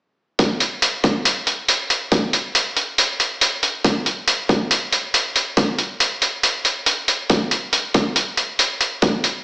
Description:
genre	deep dubstep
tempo	139 BPM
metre	4/4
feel	swing 54% on 16ths, half-time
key	none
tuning	none
part	electronic hi-hat	drums	0.4-9.3 s	none	-18 LUFS	equal	none
part	electronic kick drum	drums	0.4-9.1 s	none	-17 LUFS	equal	high-pass filter on kick, high-pass filter on room
room	light reverb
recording	played on a big sound system in a bare room, large studio reverb, small speaker sound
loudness	-16 LUFS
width	side -23 dB against mid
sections	0.4-9.4 A section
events	none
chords	none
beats	| 0.39 0.82 1.25 1.69 | 2.12 2.55 2.98 3.41 | 3.84 4.28 4.71 5.14 | 5.57 6.00 6.43 6.87 | 7.30 7.73 8.16 8.59 | 9.02

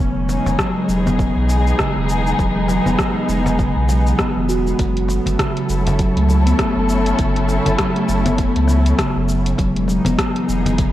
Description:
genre	organic downtempo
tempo	100 BPM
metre	4/4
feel	swing 58% on 16ths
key	unclear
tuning	A4 = 440 Hz
part	muted studio string section	sustained chords	0.0-10.9 s	E3 to A4	-22 LUFS	equal	sidechain pumping
part	steel tongue drum	arpeggios	0.0-10.9 s	C#3 to F#4	-20 LUFS	equal	tape echo
part	warm sub bass	bass	0.0-10.9 s	E1 to C#2	-19 LUFS	equal	sidechain pumping
part	deep house drum kit	drums	0.3-10.9 s	hi-hat, rim click, shaker	-25 LUFS	equal	overdrive
part	cajon	percussion	0.3-10.8 s	none	-26 LUFS	left 1 dB	none
part	electronic kick drum	drums	0.6-10.9 s	none	-22 LUFS	equal	overdrive
room	light reverb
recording	worn, warbling old tape, cassette tape, warbly pitch drift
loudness	-15 LUFS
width	side -13 dB against mid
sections	0.0-10.9 A section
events	none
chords	0.0 Emaj7; 4.8 F#m7; 9.6 Emaj7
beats	0.59 1.19 1.79 | 2.39 2.99 3.59 4.19 | 4.79 5.39 5.99 6.59 | 7.19 7.79 8.39 8.99 | 9.59 10.19 10.79

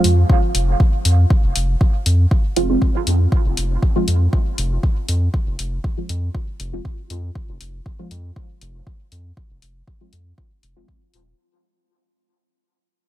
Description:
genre	dub techno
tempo	119 BPM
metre	4/4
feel	straight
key	F minor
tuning	A4 = 444 Hz
part	round analog bass	bass	0.0-11.3 s	Eb1 to F2	-17 LUFS	equal	sidechain pumping
part	electronic hi-hat	drums	0.0-11.2 s	none	-24 LUFS	left 4 dB	overdrive
part	electronic kick drum	drums	0.3-11.0 s	none	-18 LUFS	equal	overdrive
part	deep mellow chord stab	stabs	2.6-10.9 s	F3 to F4	-23 LUFS	right 3 dB	chorus, phaser, sidechain pumping, dub echo
room	little or no reverb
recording	none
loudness	-16 LUFS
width	side -14 dB against mid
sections	0.0-11.4 A section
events	fade-out 0.0-11.4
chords	0.0 Fm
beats	0.29 0.80 | 1.30 1.81 2.31 2.82 | 3.32 3.82 4.33 4.83 | 5.34 5.84 6.34 6.85 | 7.35 7.86 8.36 8.87 | 9.37 9.88 10.38 10.88

